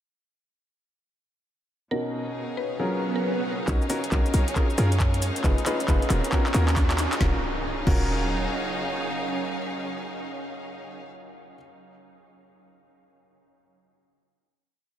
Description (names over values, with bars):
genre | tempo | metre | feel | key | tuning
UK garage, two-step garage | 136 BPM | 4/4 | swing 64% on 16ths | Eb minor | A4 = 441 Hz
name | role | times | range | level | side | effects
mallet-like synth pluck | melody | 1.9-3.3 s | A#4 to B4 | -37 LUFS | right 1 dB | none
ethereal airy pad | sustained chords | 2.4-10.9 s | Gb3 to F5 | -36 LUFS | right 2 dB | ensemble chorus, built-in reverb, tremolo, sidechain pumping
warm grand piano | stabs | 1.9-11.5 s | B2 to Cb5 | -30 LUFS | left 1 dB | low-pass filter, diffuse ambient delay
clear studio string section | texture | 1.9-11.1 s | B2 to F5 | -34 LUFS | equal | sidechain pumping
swell, riser and impact | sound effects | 3.0-10.9 s | none | -35 LUFS | equal | none
short 808-style bass | bass | 3.7-8.5 s | Eb1 to Gb2 | -24 LUFS | equal | none
electronic kick drum | drums | 3.7-8.0 s | none | -24 LUFS | equal | none
garage drum kit | drums | 3.7-8.0 s | crash cymbal, handclaps, hi-hat, shaker, snare drum | -32 LUFS | equal | low-pass filter on snare, low-pass filter on perc, low-pass filter on hats, low-pass filter on cymbals, low-pass filter on room
room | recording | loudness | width
moderate cathedral reverb, RT60 6.3 s | dreamy mix soaked in reverb | -23 LUFS | side -11 dB against mid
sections
1.9-3.7 intro; 3.7-7.2 build; 7.2-10.7 final chord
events
filter sweep on grand piano 1.9-3.7; filter sweep on ambient pad 1.9-3.7; swell 3.0-3.7; build-up 3.7-7.2; drum fill 3.7-7.2; riser 3.7-7.2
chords
1.9 Bmaj7; 2.8 Gbmaj7; 3.7 Bmaj7; 4.6 Gbmaj7; 5.4 Fm7b5; 6.1 Ebm9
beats
| 1.91 2.35 2.79 3.24 | 3.68 4.12 4.56 5.00 | 5.44 5.88 6.32 6.76 | 7.21 7.65 8.09 8.53 | 8.97 9.41 9.85 10.29